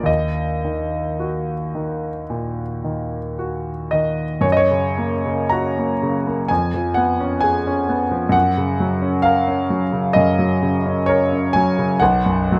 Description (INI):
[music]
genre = classical, romantic nocturne for solo piano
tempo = 53-67 BPM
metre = 4/4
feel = rubato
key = Eb minor, F# major from 4.4 s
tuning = A4 = 440 Hz
[part]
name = clear concert grand piano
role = solo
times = 0.0-12.6 s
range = Bb1 to A#5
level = -20 LUFS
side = equal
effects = none
[sound]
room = light reverb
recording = none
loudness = -20 LUFS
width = mono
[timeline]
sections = 0.0-4.4 A section; 4.4-12.6 B section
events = none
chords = 0.1 Ebm; 4.4 F#; 6.5 C#7/E#; 8.3 F#; 12.0 B5